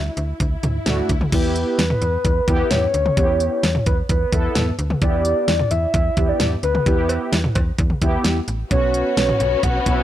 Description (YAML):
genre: synth-pop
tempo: 130 BPM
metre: 4/4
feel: straight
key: E dorian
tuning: A4 = 438 Hz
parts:
  - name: soft octave-layered synth lead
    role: melody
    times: 0.0-10.0 s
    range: B4 to F#5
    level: -22 LUFS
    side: left 1 dB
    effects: chorus, phaser, tape echo
  - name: slap-like FM bass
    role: bass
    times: 0.0-10.0 s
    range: A1 to E2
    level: -23 LUFS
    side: equal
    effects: transformer saturation
  - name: swell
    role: sound effects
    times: 0.0-1.3 s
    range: none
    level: -33 LUFS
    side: equal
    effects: none
  - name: pop drum kit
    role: drums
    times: 0.2-10.0 s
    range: cowbell, crash cymbal, hi-hat, kick drum, snare drum, toms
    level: -21 LUFS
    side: equal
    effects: none
  - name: mellow synth brass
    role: accompaniment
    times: 0.9-10.0 s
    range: A3 to A4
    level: -25 LUFS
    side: right 1 dB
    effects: chorus
  - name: warm studio string section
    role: sustained chords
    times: 8.7-10.0 s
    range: B3 to F#4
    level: -24 LUFS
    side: left 1 dB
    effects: none
room: little or no reverb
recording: dry, gritty hardware recording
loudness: -17 LUFS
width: side -12 dB against mid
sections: 0.0-1.3 A section; 1.3-10.0 B section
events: swell 0.0-1.3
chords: 0.0 Dadd9; 1.3 Em; 8.7 Bsus2